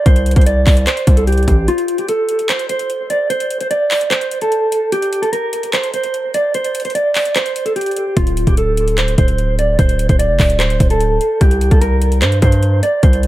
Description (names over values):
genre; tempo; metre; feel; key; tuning
hip hop, trap; 148 BPM; 4/4; half-time; D minor; A4 = 440 Hz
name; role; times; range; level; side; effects
mellow electric guitar; melody; 0.0-13.3 s; F4 to D5; -16 LUFS; right 1 dB; tremolo, low-pass filter, dub echo
distorted 808-style bass; bass; 0.1-1.7, 8.2-13.3 s; D1 to G2; -14 LUFS; equal; distortion
trap drum kit; drums; 0.1-13.3 s; handclaps, hi-hat, kick drum; -16 LUFS; equal; none
room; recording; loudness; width
little or no reverb; echo-heavy mix; -12 LUFS; side -15 dB against mid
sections
0.0-13.3 A section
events
break 1.7-8.2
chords
0.0 C5; 1.7 N.C.; 8.2 D7(no3); 11.4 C5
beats
| 0.06 0.46 0.87 1.27 | 1.68 2.08 2.49 2.90 | 3.30 3.71 4.11 4.52 | 4.92 5.33 5.73 6.14 | 6.54 6.95 7.36 7.76 | 8.17 8.57 8.98 9.38 | 9.79 10.19 10.60 11.00 | 11.41 11.81 12.22 12.62 | 13.03